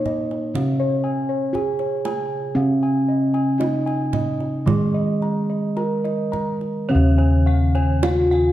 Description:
Javanese gamelan; 52-62 BPM; 4/4; straight; A4 = 440 Hz
gamelan-type bronze metallophone; melody; 0.0-8.5 s; Db4-40c to Bb4+20c; -24 LUFS; right 1 dB
gamelan-type bronze metallophone; accompaniment; 0.0-8.5 s; Db3-40c to Bb3+20c; -25 LUFS; right 1 dB
gamelan-type bossed gongs; arpeggios; 0.0-8.5 s; Db5-40c to Bb5+20c; -28 LUFS; left 2 dB
gamelan-type bossed gongs; bass; 0.0-8.5 s; Eb2 to Bb4+20c; -22 LUFS; equal
kendang; percussion; 0.1-8.5 s; -28 LUFS; right 4 dB
gamelan-type bronze metallophone; arpeggios; 6.9-8.5 s; Db5-40c to F5+40c; -31 LUFS; right 3 dB
moderate recital hall reverb, RT60 1.4 s; dark, warm production; -18 LUFS; side -13 dB against mid
0.0-6.9 A section; 6.9-8.5 B section

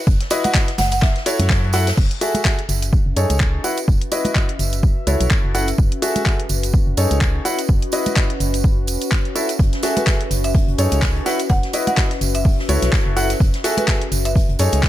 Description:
piano house; 126 BPM; 4/4; swing 57% on 16ths; F# dorian; A4 = 441 Hz
organ-like FM bass; bass; 0.1-14.9 s; E1 to F#2; -20 LUFS; equal; sidechain pumping
electronic kick drum; drums; 0.1-14.9 s; -17 LUFS; equal
swinging big-band drum kit; drums; 0.1-2.0, 9.6-14.9 s; hi-hat, snare drum; -32 LUFS; left 1 dB; sidechain pumping on hats, high-pass filter on hats, high-pass filter on snare, high-pass filter on room
tambourine and congas; percussion; 0.1-14.9 s; -27 LUFS; right 5 dB
garage drum kit; drums; 0.2-14.9 s; crash cymbal, handclaps, hi-hat, ride cymbal; -25 LUFS; left 1 dB
clear concert grand piano; riff; 0.3-14.9 s; D#4 to F#5; -22 LUFS; left 1 dB; sidechain pumping, low-pass filter, digital delay
buzzing marimba with hard mallets; melody; 0.4-1.4, 10.0-14.4 s; B4 to F#5; -26 LUFS; right 1 dB; digital delay
warbly tape-like pad; texture; 2.7-14.9 s; C#4 to E5; -28 LUFS; left 2 dB; chorus, built-in reverb, sidechain pumping
small room ambience; -16 LUFS; side -14 dB against mid
0.0-2.0 A section; 2.0-14.9 B section
drop 0.0-2.0
0.0 Badd11/F#; 1.0 A6; 2.0 F#m9; 2.9 B13/F#; 3.6 C#m11/F#; 4.8 A6; 5.8 F#m9; 6.7 B13/F#; 7.5 C#m11/F#; 8.6 A6; 9.6 F#m9; 10.5 B13/F#; 11.3 C#m11/F#; 12.5 A6; 13.4 F#m9; 14.4 B13/F#

